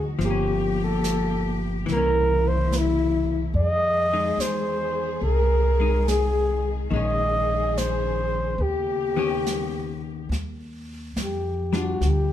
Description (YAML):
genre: jazz ballad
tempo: 71 BPM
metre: 4/4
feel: swing 66% on 8ths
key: unclear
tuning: A4 = 439 Hz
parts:
  - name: breathy flugelhorn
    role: melody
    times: 0.0-12.3 s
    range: E4 to Eb5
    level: -24 LUFS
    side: equal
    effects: none
  - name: archtop guitar, miked and amplified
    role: accompaniment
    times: 0.0-12.3 s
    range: Eb3 to G4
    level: -29 LUFS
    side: left 3 dB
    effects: none
  - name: warm studio cello section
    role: sustained chords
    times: 0.0-10.3 s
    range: Db3 to Ab4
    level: -32 LUFS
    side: left 4 dB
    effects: none
  - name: upright bass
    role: bass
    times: 0.0-12.3 s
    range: G1 to F2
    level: -26 LUFS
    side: equal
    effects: none
  - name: jazz brush drum kit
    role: drums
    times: 0.2-12.3 s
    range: brushed snare drum, hi-hat, snare drum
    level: -34 LUFS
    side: right 1 dB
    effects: none
room: light reverb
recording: band playing live in one room, lossy compression artefacts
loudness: -21 LUFS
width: side -11 dB against mid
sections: 0.0-10.3 A section; 10.3-12.3 B section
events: flugelhorn solo 10.3-12.3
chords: 0.2 Gm7b5; 1.9 C7b9; 3.5 Fm7; 6.9 Bbm11; 8.6 Ebaug7; 10.3 Ebmaj9